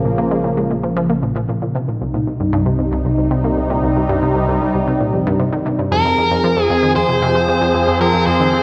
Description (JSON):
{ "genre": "ambient, sequencer-driven space music", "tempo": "115 BPM", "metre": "4/4", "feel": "straight", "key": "F minor", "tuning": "A4 = 435 Hz", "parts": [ { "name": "sweeping resonant pad", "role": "sustained chords", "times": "0.0-8.6 s", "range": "C3 to Ab4", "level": "-20 LUFS", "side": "equal", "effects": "chorus" }, { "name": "analog pluck", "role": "riff", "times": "0.0-8.6 s", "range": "C2 to Bb3", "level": "-22 LUFS", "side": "equal", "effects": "chorus, delay" }, { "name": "analog drone", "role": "bass", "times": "0.0-8.6 s", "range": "Bb1 to F2", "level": "-28 LUFS", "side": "equal", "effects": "chorus" }, { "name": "dark smooth lead guitar", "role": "melody", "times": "5.9-8.6 s", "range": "Bb4 to C5", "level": "-19 LUFS", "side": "equal", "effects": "overdrive, delay" } ], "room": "wet scoring stage reverb, RT60 1.9 s, digital ambience", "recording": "none", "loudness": "-17 LUFS", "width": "mono", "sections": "0.0-8.6 A section", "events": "none", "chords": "0.0 Bbm; 1.7 Cm; 5.9 Fm" }